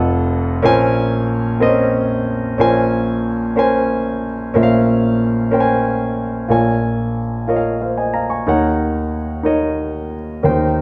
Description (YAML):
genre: gospel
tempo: 61 BPM (dotted quarters)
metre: 6/8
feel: straight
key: Bb minor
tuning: A4 = 436 Hz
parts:
  - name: warm grand piano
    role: solo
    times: 0.0-10.8 s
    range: F1 to Db6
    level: -17 LUFS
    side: equal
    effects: none
room: moderate recital hall reverb, RT60 1.4 s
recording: none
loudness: -17 LUFS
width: mono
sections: 0.0-2.6 A section; 2.6-6.5 B section; 6.5-10.8 C section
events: none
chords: 0.0 F7b9; 0.6 Bbm9; 6.5 Bbm7; 8.5 Ebm7